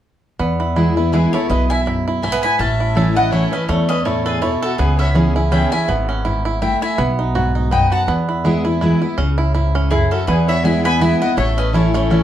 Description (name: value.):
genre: bluegrass.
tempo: 164 BPM.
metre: 3/4.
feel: swing 55% on 8ths.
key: E major.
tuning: A4 = 442 Hz.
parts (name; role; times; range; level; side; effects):
bluegrass banjo; melody; 0.4-12.2 s; A3 to A4; -22 LUFS; right 4 dB; none.
picked steel-string acoustic guitar; accompaniment; 0.4-12.2 s; E2 to G#4; -18 LUFS; equal; none.
upright bass; bass; 0.4-12.2 s; G#1 to E2; -20 LUFS; equal; none.
mandolin; melody; 1.1-12.2 s; G#4 to B5; -22 LUFS; left 1 dB; none.
dark fiddle; second line; 1.1-12.2 s; E4 to G#5; -24 LUFS; left 2 dB; none.
room: wet studio reverb, RT60 0.6 s.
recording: heard from further back in the room.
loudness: -14 LUFS.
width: side -11 dB against mid.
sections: 0.4-9.2 A section; 9.2-12.2 B section.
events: none.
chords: 0.4 E; 2.6 A; 4.8 C#m7; 7.0 B; 8.1 E; 9.2 C#m; 10.3 E; 11.4 A.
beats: | 0.40 0.77 1.13 | 1.50 1.86 2.23 | 2.60 2.96 3.33 | 3.69 4.06 4.43 | 4.79 5.16 5.52 | 5.89 6.26 6.62 | 6.99 7.35 7.72 | 8.09 8.45 8.82 | 9.18 9.55 9.91 | 10.28 10.65 11.01 | 11.38 11.74 12.11.